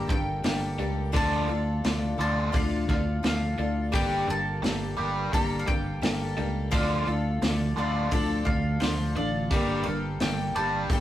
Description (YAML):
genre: folk rock and heartland rock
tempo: 86 BPM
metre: 4/4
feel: straight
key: G minor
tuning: A4 = 442 Hz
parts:
  - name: bowl-back mandolin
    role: melody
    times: 0.0-11.0 s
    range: C5 to Bb5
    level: -34 LUFS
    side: equal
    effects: analog delay
  - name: picked twelve-string acoustic guitar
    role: accompaniment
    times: 0.0-11.0 s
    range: G2 to A4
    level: -32 LUFS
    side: left 4 dB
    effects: none
  - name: crunchy overdriven guitar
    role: riff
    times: 0.0-11.0 s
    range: D3 to G4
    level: -32 LUFS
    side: right 2 dB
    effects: phaser
  - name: fingered electric bass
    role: bass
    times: 0.0-11.0 s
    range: G1 to D2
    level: -29 LUFS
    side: equal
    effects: none
  - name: vintage drum kit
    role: drums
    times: 0.1-11.0 s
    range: hi-hat, kick drum, snare drum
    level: -28 LUFS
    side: equal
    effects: none
room: wet studio reverb, RT60 0.6 s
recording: rough rehearsal-room recording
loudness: -24 LUFS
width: side -13 dB against mid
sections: 0.0-11.0 A section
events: none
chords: 0.0 Gmadd9; 1.1 Dm; 3.9 Gmadd9; 6.7 Dm; 9.5 Gmadd9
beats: 0.45 | 1.15 1.85 2.54 3.24 | 3.94 4.64 5.34 6.03 | 6.73 7.43 8.12 8.82 | 9.52 10.21 10.91